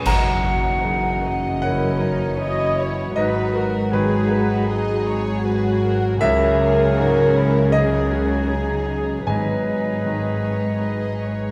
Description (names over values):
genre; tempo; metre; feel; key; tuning
cinematic, emotional film score for orchestra; 78 BPM; 4/4; rubato; G# minor; A4 = 441 Hz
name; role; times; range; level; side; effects
concert flute; second line; 0.0-11.5 s; G#4 to F#5; -29 LUFS; equal; none
bright grand piano; accompaniment; 0.0-11.5 s; C#2 to A#5; -28 LUFS; equal; none
warm studio cello section; bass; 0.0-11.5 s; F#2 to C#3; -28 LUFS; equal; none
warm studio violin section; melody; 0.1-11.5 s; G#4 to D#5; -38 LUFS; equal; none
dark studio violin section; second line; 0.1-11.5 s; C#4 to G#4; -32 LUFS; equal; none
mellow French horn section; sustained chords; 0.1-11.5 s; E3 to B4; -30 LUFS; equal; none
rich studio double bass section; bass; 0.1-11.5 s; F#1 to C#2; -28 LUFS; equal; none
clash cymbals and concert bass drum; percussion; 0.1-1.6 s; none; -28 LUFS; equal; none
dark studio viola section; accompaniment; 1.6-11.5 s; F#4 to D#5; -28 LUFS; equal; none
timpani; percussion; 9.3-10.4 s; G#2; -33 LUFS; equal; none
room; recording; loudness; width
wet scoring stage reverb, RT60 1.8 s; none; -20 LUFS; mono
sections
0.1-11.5 A section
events
band accent 0.1-0.8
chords
0.1 F#7; 3.2 G#m7; 6.2 C#madd9; 9.3 G#m7